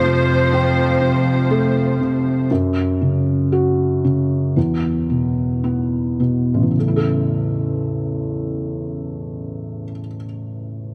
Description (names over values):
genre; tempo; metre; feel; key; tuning
pop ballad; 53-62 BPM; 4/4; straight; unclear; A4 = 440 Hz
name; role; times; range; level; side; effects
felt-muted upright piano; accompaniment; 0.0-10.9 s; A1 to A4; -20 LUFS; equal; none
warm studio string section; sustained chords; 0.0-2.5 s; F2 to C5; -22 LUFS; equal; none
room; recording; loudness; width
light reverb, small room ambience; none; -19 LUFS; mono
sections
0.0-6.8 A section; 6.8-10.9 B section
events
slowing down 0.0-6.8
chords
0.0 F; 2.5 F#5; 4.6 E5; 6.8 A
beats
0.53 1.50 | 2.50 3.52 4.56 5.64 | 6.75 7.89 9.02 10.16